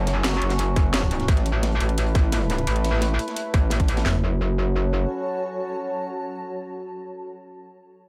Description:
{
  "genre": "dark technical drum and bass",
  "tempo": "173 BPM",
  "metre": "4/4",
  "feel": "straight",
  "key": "F# minor",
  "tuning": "A4 = 441 Hz",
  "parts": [
    { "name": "sweeping resonant pad", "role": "sustained chords", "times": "0.0-7.3 s", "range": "F#3 to B4", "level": "-32 LUFS", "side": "equal", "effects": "chorus, phaser, sidechain pumping" },
    { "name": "metallic wobble bass", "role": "bass", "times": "0.0-5.1 s", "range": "F#1 to A1", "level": "-25 LUFS", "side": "equal", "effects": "chorus, overdrive, sidechain pumping" },
    { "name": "downlifter", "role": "sound effects", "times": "0.0-1.3 s", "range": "none", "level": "barely audible", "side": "none", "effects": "none" },
    { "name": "granular cloud pad", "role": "texture", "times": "0.0-7.4 s", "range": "F#4 to B5", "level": "-37 LUFS", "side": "equal", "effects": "built-in reverb, sidechain pumping" },
    { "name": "crunchy breakbeat drum kit", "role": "drums", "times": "0.1-4.1 s", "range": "hi-hat, snare drum", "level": "-37 LUFS", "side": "equal", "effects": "high-pass filter on hats, studio reverb, high-pass filter on snare, high-pass filter on room" },
    { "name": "drum and bass drum kit", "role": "drums", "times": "0.1-4.0 s", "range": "hi-hat, snare drum", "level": "-30 LUFS", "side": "equal", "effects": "overdrive, studio reverb" },
    { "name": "drum and bass drum kit", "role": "drums", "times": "0.8-4.1 s", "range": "handclaps, kick drum, snare drum, toms", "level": "-23 LUFS", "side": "equal", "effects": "overdrive, studio reverb" }
  ],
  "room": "light reverb",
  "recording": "none",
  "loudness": "-23 LUFS",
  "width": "mono",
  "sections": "0.0-4.1 A section; 4.1-6.8 B section",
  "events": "none",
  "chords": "0.0 F#m; 1.3 Aadd9; 4.1 F#m"
}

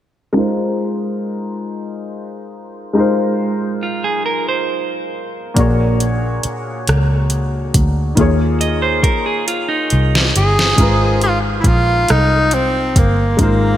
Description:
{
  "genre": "slow six-eight R&B",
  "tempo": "46 BPM (dotted quarters)",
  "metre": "6/8",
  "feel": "straight",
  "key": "Ab major",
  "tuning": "A4 = 439 Hz",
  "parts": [
    { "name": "warm concert grand piano", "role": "accompaniment", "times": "0.3-13.8 s", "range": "Bb2 to C#5", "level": "-19 LUFS", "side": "left 1 dB", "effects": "lush chorus, low-pass filter" },
    { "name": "clean electric guitar", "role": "second line", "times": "3.8-10.7 s", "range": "Eb4 to Eb5", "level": "-20 LUFS", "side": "right 3 dB", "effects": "none" },
    { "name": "vintage muted fingered electric bass", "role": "bass", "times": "5.6-13.8 s", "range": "G1 to Eb2", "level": "-16 LUFS", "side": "equal", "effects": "none" },
    { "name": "smooth R&B drum kit", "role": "drums", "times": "5.6-13.6 s", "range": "hi-hat, kick drum, rim click, snare drum", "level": "-17 LUFS", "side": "equal", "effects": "gated reverb" },
    { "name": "breathy tenor saxophone", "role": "melody", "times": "10.4-13.8 s", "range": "Bb3 to Ab4", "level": "-16 LUFS", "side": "equal", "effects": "none" }
  ],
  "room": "moderate lush hall reverb, RT60 3.1 s",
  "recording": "bright 1980s-style digital production",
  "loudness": "-13 LUFS",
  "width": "side -12 dB against mid",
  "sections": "0.3-10.8 A section; 10.8-13.8 B section",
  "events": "filter sweep on grand piano 0.3-10.8; drum fill 9.5-10.8",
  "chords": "0.3 Ab69; 5.6 Bb7alt; 8.2 Eb7sus4; 10.8 Ab69"
}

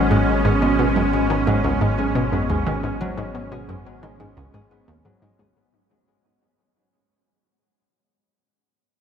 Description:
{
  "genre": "ambient",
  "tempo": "88 BPM",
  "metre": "4/4",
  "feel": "straight",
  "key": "G# minor",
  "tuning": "A4 = 439 Hz",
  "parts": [
    { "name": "evolving wavetable pad", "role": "sustained chords", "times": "0.0-5.6 s", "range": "G#3 to C#4", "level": "-22 LUFS", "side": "right 1 dB", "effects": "ensemble chorus, built-in reverb, shimmer reverb" },
    { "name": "concert harp", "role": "arpeggios", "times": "0.0-7.8 s", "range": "F#3 to G#4", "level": "-28 LUFS", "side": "left 2 dB", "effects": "auto-pan, ping-pong delay, shimmer reverb" },
    { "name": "analog pluck", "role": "riff", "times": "0.0-5.4 s", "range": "C#2 to D#3", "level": "-23 LUFS", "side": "equal", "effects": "chorus, ping-pong delay" },
    { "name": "analog drone", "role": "bass", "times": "0.0-5.5 s", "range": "G#1", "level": "-27 LUFS", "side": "equal", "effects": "chorus" }
  ],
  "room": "wet huge ambient reverb, RT60 8.6 s",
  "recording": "none",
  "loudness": "-18 LUFS",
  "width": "side -8 dB against mid",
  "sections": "0.0-5.6 A section",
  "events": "fade-out 0.0-5.6",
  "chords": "0.0 G#m"
}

